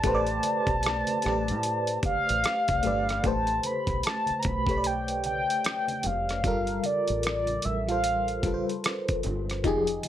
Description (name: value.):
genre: R&B, neo-soul.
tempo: 75 BPM.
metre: 4/4.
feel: swing 60% on 16ths.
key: A minor from 3.2 s.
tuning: A4 = 441 Hz.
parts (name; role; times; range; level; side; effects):
mellow horn-like synth lead; melody; 0.0-8.6 s; D5 to B5; -28 LUFS; equal; chorus.
FM electric piano with tremolo; accompaniment; 0.0-10.1 s; F3 to D5; -30 LUFS; left 1 dB; phaser, plate reverb.
deep dub fingered electric bass; bass; 0.0-10.0 s; F1 to A2; -33 LUFS; equal; none.
dusty soul sampler-style drum kit; drums; 0.0-10.1 s; hi-hat, kick drum, rim click; -30 LUFS; equal; overdrive.
congas; percussion; 0.0-10.1 s; none; -42 LUFS; right 2 dB; none.
room: light reverb.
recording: none.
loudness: -25 LUFS.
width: side -11 dB against mid.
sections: 0.0-3.2 A section; 3.2-10.1 B section.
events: none.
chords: 0.0 Am9; 6.4 Gm9.